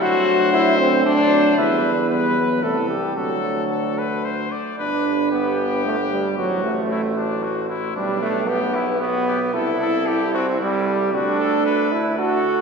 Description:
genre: classical, brass quintet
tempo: 114 BPM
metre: 3/4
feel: straight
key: G major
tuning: A4 = 440 Hz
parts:
  - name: clear cornet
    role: melody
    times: 0.0-12.6 s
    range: D4 to D5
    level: -25 LUFS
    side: left 4 dB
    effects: none
  - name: mellow flugelhorn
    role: second line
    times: 0.0-12.6 s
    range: F#4 to F#5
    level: -27 LUFS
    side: right 2 dB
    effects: none
  - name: clear trombone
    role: accompaniment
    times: 0.0-12.6 s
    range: D3 to F#4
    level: -23 LUFS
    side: right 2 dB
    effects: none
  - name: warm French horn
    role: accompaniment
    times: 0.0-12.6 s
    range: F#3 to G4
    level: -25 LUFS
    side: left 2 dB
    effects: none
  - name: clear tuba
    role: bass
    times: 0.0-12.4 s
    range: G1 to E2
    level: -24 LUFS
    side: right 2 dB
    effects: none
room: wet concert hall reverb, RT60 2.4 s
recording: heard from further back in the room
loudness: -18 LUFS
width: side -5 dB against mid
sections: 0.0-4.8 A section; 4.8-12.6 B section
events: none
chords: 0.0 D7; 1.6 Em; 2.6 Am/C; 3.2 D; 4.8 G; 6.4 Am6; 8.0 G/B; 9.5 Am7/C; 11.1 D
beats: | 0.02 0.54 1.06 | 1.58 2.10 2.63 | 3.17 3.71 4.25 | 4.79 5.32 5.85 | 6.38 6.90 7.43 | 7.96 8.48 9.01 | 9.54 10.07 10.60 | 11.13 11.66 12.18

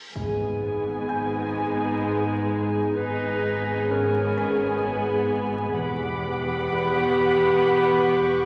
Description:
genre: cinematic, suspense film score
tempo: 64 BPM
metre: 3/4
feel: straight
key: G# harmonic minor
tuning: A4 = 440 Hz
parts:
  - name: reverse cymbal and impact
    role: sound effects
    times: 0.0-3.0 s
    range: none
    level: -40 LUFS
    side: equal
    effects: none
  - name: muted studio viola section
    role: accompaniment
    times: 0.1-8.5 s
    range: B3 to F#5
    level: -34 LUFS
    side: equal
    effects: none
  - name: muted studio double bass section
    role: bass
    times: 0.1-8.5 s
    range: E1 to G#1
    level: -37 LUFS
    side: equal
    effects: none
  - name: muted studio violin section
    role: melody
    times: 0.2-8.5 s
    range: G#5 to B5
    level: -35 LUFS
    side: equal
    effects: none
  - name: clear French horn section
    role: sustained chords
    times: 0.2-8.4 s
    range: B3 to G#4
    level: -32 LUFS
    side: equal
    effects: none
  - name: concert harp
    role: riff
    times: 0.2-8.5 s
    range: E2 to G#3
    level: -33 LUFS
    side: equal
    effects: none
  - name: muted studio cello section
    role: bass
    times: 0.2-8.5 s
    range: E2 to G#2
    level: -35 LUFS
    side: equal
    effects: none
  - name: muted studio violin section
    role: second line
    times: 1.1-8.5 s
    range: G#3 to D#4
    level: -35 LUFS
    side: equal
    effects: none
  - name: warm clarinet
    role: second line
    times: 1.1-8.5 s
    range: D#4 to B4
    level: -28 LUFS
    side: equal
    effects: none
  - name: music box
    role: texture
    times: 1.1-7.1 s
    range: G#5 to B6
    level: -38 LUFS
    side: equal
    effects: none
  - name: muted symphonic violin section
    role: texture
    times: 5.8-8.5 s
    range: B5 to D6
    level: -35 LUFS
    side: equal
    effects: none
room: wet concert hall reverb, RT60 2.1 s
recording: vinyl crackle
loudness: -24 LUFS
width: mono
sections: 0.2-8.5 A section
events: break 0.0; reverse cymbal 0.0; impact 0.2-3.0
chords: 0.2 G#m; 5.8 Emadd9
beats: | 0.15 1.09 2.03 | 2.96 3.90 4.84 | 5.78 6.71 7.65

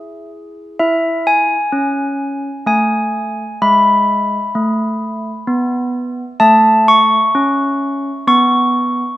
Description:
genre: classical, tune for handbells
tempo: 64 BPM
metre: 3/4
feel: straight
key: E major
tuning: A4 = 440 Hz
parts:
  - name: handbells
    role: solo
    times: 0.0-9.2 s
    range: G#3 to C#6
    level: -12 LUFS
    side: equal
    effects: none
room: moderate concert hall reverb, RT60 2.0 s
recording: none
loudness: -12 LUFS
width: side -16 dB against mid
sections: 0.8-9.2 A section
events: none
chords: 0.0 E; 3.6 E/G#; 6.4 A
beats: | 0.81 1.75 2.68 | 3.62 4.55 5.48 | 6.41 7.35 8.28

